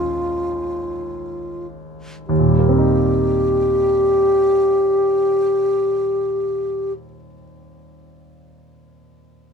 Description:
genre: classical, impressionist duo for alto flute and grand piano.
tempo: 31-39 BPM (dotted quarters).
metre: 12/8.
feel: rubato.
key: Eb mixolydian.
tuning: A4 = 441 Hz.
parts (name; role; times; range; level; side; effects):
wooden-headed alto flute; melody; 0.0-6.9 s; F4 to G4; -18 LUFS; left 1 dB; none.
clear concert grand piano; accompaniment; 0.0-9.5 s; Eb2 to Eb4; -22 LUFS; right 2 dB; none.
room: moderate small room reverb, RT60 0.5 s.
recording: dark, warm production.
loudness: -16 LUFS.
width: side -6 dB against mid.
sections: 0.0-2.3 A section; 2.3-9.4 B section.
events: slowing down 0.0-2.3.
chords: 0.0 Dbadd9/Eb; 2.3 Eb6.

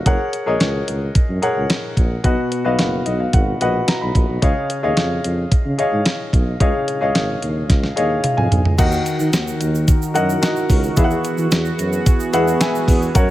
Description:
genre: 1980s-style pop.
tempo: 110 BPM.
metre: 4/4.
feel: straight.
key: unclear.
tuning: A4 = 440 Hz.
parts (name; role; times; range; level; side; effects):
warm baby grand piano; accompaniment; 0.0-13.3 s; B2 to B5; -20 LUFS; left 1 dB; none.
warm tuba; bass; 0.0-13.3 s; F#1 to E3; -22 LUFS; equal; none.
clean 12-bit digital drum machine; drums; 0.1-13.3 s; crash cymbal, hi-hat, kick drum, snare drum, toms; -17 LUFS; equal; none.
sweeping resonant pad; sustained chords; 8.8-13.3 s; D#3 to A#4; -23 LUFS; right 2 dB; chorus.
egg shaker; percussion; 8.8-13.3 s; none; -36 LUFS; right 8 dB; none.
room: studio ambience.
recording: none.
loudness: -15 LUFS.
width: side -14 dB against mid.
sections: 0.0-8.8 A section; 8.8-13.3 B section.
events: grand piano fill 2.8-4.4, 7.7-8.8; drum fill 7.7-8.8.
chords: 0.1 F#add9; 2.2 B; 4.4 C#add9; 8.8 D#m; 11.0 Eadd9.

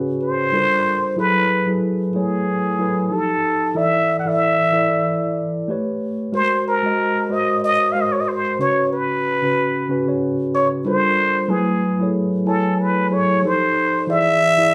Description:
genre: R&B.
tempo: 93 BPM.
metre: 4/4.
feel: swing 56% on 16ths.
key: unclear.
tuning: A4 = 442 Hz.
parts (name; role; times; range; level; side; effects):
mellow tine electric piano; accompaniment; 0.0-14.7 s; C#3 to G#5; -23 LUFS; equal; none.
trumpet with plunger mute; melody; 0.2-14.7 s; G#4 to F#5; -21 LUFS; equal; none.
room: wet large studio reverb, RT60 0.9 s.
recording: band playing live in one room.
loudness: -19 LUFS.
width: mono.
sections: 0.0-11.5 A section; 11.5-14.7 A section.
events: none.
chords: 0.0 C#7sus4; 0.5 Gm11; 1.2 F#m11; 3.1 F9; 3.7 E7sus4; 5.7 A9; 6.3 G#9; 8.6 C#7sus4; 10.8 Gm11; 11.5 F#m11; 13.4 F9; 14.1 E7.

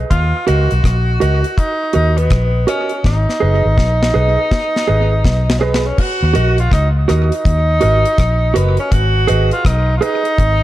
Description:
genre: roots reggae.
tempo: 82 BPM.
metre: 4/4.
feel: swing 62% on 16ths.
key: Eb minor.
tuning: A4 = 445 Hz.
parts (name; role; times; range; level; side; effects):
vintage muted fingered electric bass; bass; 0.0-10.6 s; Gb1 to Eb2; -14 LUFS; equal; none.
clear tenor saxophone; melody; 0.1-10.6 s; Cb4 to Gb4; -18 LUFS; equal; dub echo.
deep reggae drum kit; drums; 0.1-10.6 s; crash cymbal, hi-hat, kick drum, rim click, snare drum; -17 LUFS; left 1 dB; tape echo.
mellow electric guitar; accompaniment; 0.5-10.3 s; Gb4 to Eb5; -21 LUFS; right 6 dB; dub echo.
room: light reverb.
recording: dark, warm production.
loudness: -12 LUFS.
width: side -14 dB against mid.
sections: 0.0-6.0 A section; 6.0-10.6 B section.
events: drum fill 3.0-6.0.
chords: 0.1 Ebm; 3.0 Abm; 6.0 Ebm; 8.9 Abm.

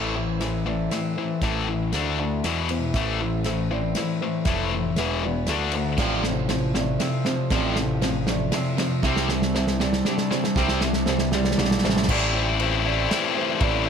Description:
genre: post-rock.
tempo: 118 BPM.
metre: 3/4.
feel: straight.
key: A minor.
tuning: A4 = 440 Hz.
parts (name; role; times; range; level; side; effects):
hand-pumped harmonium; sustained chords; 0.0-13.9 s; D3 to A5; -37 LUFS; right 7 dB; none.
felt-muted upright piano; arpeggios; 0.0-13.9 s; B4 to E5; -34 LUFS; right 10 dB; analog delay.
semi-hollow electric guitar; arpeggios; 0.0-12.1 s; A2 to E4; -33 LUFS; right 1 dB; analog delay.
tight distorted guitar; riff; 0.0-13.9 s; E2 to E4; -25 LUFS; left 8 dB; distortion.
growling picked electric bass; bass; 0.0-13.9 s; E1 to E2; -28 LUFS; right 1 dB; overdrive.
loose indie drum kit; drums; 0.4-13.7 s; crash cymbal, kick drum, ride cymbal, snare drum; -28 LUFS; right 1 dB; none.
fuzz guitar; riff; 6.0-12.1 s; F2 to C4; -28 LUFS; right 16 dB; distortion.
room: studio reverb.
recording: none.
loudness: -21 LUFS.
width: side -7 dB against mid.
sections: 0.0-12.1 A section; 12.1-13.9 B section.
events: build-up 0.0-12.1; drum fill 0.0-12.1.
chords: 0.0 Am; 1.9 D5; 2.4 E5; 3.0 Am; 5.0 E5; 5.5 D5; 6.0 F/A; 9.1 Cadd9; 12.1 Am7.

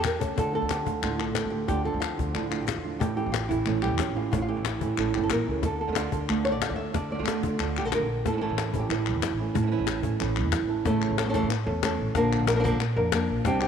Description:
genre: flamenco.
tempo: 183 BPM.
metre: 4/4.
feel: straight.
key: A phrygian dominant.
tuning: A4 = 440 Hz.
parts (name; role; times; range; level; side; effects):
flamenco guitar; melody; 0.0-13.7 s; A2 to E5; -27 LUFS; right 1 dB; none.
upright bass; bass; 0.0-13.7 s; G1 to Bb2; -31 LUFS; equal; none.
cajon; percussion; 0.0-13.6 s; none; -32 LUFS; left 7 dB; none.
palmas hand claps; percussion; 0.0-13.7 s; none; -35 LUFS; left 12 dB; none.
flamenco guitar; stabs; 0.4-10.8 s; D3 to F4; -34 LUFS; right 11 dB; none.
room: light reverb, small room ambience.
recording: 1960s-style stereo with parts hard left and right.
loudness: -24 LUFS.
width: side -7 dB against mid.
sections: 0.4-10.9 A section; 10.9-13.7 B section.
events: drum fill 0.0-0.4.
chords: 0.4 Dm; 3.0 A; 5.6 Dm; 8.2 A; 12.2 Bb.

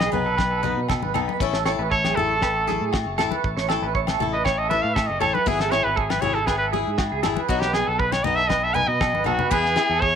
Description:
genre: highlife guitar band.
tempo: 118 BPM.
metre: 4/4.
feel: straight.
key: E major.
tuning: A4 = 437 Hz.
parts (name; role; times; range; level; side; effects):
clear trumpet; melody; 0.0-10.2 s; F#4 to G#5; -22 LUFS; equal; none.
mellow tonewheel organ; sustained chords; 0.0-10.2 s; D#5 to C#6; -35 LUFS; equal; slow rotary speaker.
clean electric guitar; arpeggios; 0.0-10.1 s; F#4 to C#5; -27 LUFS; right 12 dB; tremolo.
fingered electric bass; bass; 0.0-10.2 s; F#1 to B2; -29 LUFS; equal; none.
damped 70s drum kit; drums; 0.0-10.1 s; crash cymbal, kick drum, snare drum; -27 LUFS; equal; none.
agogo bells; percussion; 0.0-9.9 s; none; -32 LUFS; left 14 dB; none.
congas; percussion; 0.0-9.5 s; none; -32 LUFS; left 8 dB; none.
picked swing-style acoustic guitar; accompaniment; 0.1-9.9 s; E3 to A4; -28 LUFS; left 12 dB; none.
room: light reverb, studio ambience.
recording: 1960s-style stereo with parts hard left and right.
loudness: -20 LUFS.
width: side -8 dB against mid.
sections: 0.0-9.5 A section.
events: trumpet solo 0.0-9.5; drum fill 9.0-9.5.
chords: 0.0 B; 1.4 A; 5.5 E/G#; 7.5 B; 9.5 E.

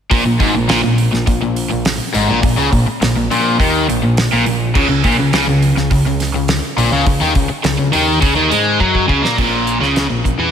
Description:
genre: classic rock.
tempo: 104 BPM.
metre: 4/4.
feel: straight.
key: unclear.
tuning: A4 = 442 Hz.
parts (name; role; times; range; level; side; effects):
cranked stack guitar; riff; 0.1-10.5 s; Ab2 to Bb3; -17 LUFS; left 8 dB; overdrive.
crunchy overdriven guitar; riff; 0.1-10.5 s; Ab2 to Bb3; -17 LUFS; right 8 dB; phaser, slapback echo.
growling picked electric bass; bass; 0.1-10.5 s; Ab1 to Bb2; -20 LUFS; equal; overdrive.
damped 70s drum kit; drums; 0.1-10.4 s; crash cymbal, hi-hat, kick drum, snare drum; -19 LUFS; right 1 dB; none.
room: moderate lush hall reverb, RT60 2.7 s.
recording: big arena sound.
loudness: -12 LUFS.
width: side -8 dB against mid.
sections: 0.1-9.4 A section; 9.4-10.5 B section.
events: drum fill 8.8-9.4.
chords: 0.1 N.C.; 4.7 Db5; 9.4 Bbm.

